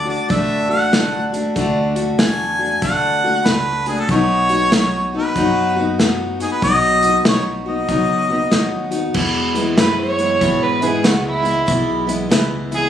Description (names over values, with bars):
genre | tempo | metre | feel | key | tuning
honky-tonk and classic country | 95 BPM | 4/4 | swing 64% on 8ths | E major | A4 = 440 Hz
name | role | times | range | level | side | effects
bright harmonica | melody | 0.0-8.9 s | G#4 to G#5 | -18 LUFS | equal | plate reverb
picked steel-string acoustic guitar | accompaniment | 0.0-12.9 s | E2 to F#4 | -19 LUFS | left 2 dB | none
upright bass | bass | 0.0-12.9 s | A1 to G#2 | -27 LUFS | right 1 dB | none
natural country drum kit | drums | 0.3-12.8 s | crash cymbal, hi-hat, kick drum, snare drum | -18 LUFS | equal | none
clear fiddle | second line | 9.8-12.9 s | E4 to C#5 | -19 LUFS | right 4 dB | none
dark upright piano | accompaniment | 9.8-12.8 s | E4 to B4 | -24 LUFS | right 2 dB | none
room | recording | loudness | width
moderate studio reverb, RT60 0.9 s | recorded on a phone in the room, studio reverb | -15 LUFS | side -10 dB against mid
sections
0.0-9.2 A section; 9.2-12.9 B section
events
fiddle solo 9.2-12.9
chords
0.0 D; 4.1 B; 9.2 E